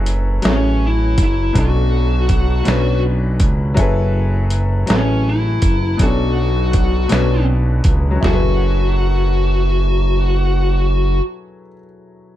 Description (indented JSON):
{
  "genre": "slow six-eight R&B",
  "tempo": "54 BPM (dotted quarters)",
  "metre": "6/8",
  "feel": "straight",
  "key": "F# minor",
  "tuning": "A4 = 440 Hz",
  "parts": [
    { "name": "clear baby grand piano", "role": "accompaniment", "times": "0.0-12.4 s", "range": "B2 to C#5", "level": "-22 LUFS", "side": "left 2 dB", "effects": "none" },
    { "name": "smooth synth bass", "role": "bass", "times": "0.0-11.2 s", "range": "F#1 to C#2", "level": "-16 LUFS", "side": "equal", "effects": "none" },
    { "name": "dusty soul sampler-style drum kit", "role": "drums", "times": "0.1-8.4 s", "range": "hi-hat, kick drum, snare drum, toms", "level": "-17 LUFS", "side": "right 1 dB", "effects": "overdrive" },
    { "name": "fuzz lead guitar", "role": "melody", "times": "0.5-11.2 s", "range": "C#4 to F#4", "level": "-20 LUFS", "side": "left 2 dB", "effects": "distortion, slapback echo" }
  ],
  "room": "little or no reverb",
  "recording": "dark, warm production",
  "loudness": "-14 LUFS",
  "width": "side -13 dB against mid",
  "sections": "0.0-8.2 A section; 8.2-10.4 B section",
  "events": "none",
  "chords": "0.0 F#m11; 1.6 Bm7; 3.8 F#m11; 6.0 Bm7; 8.2 F#m11"
}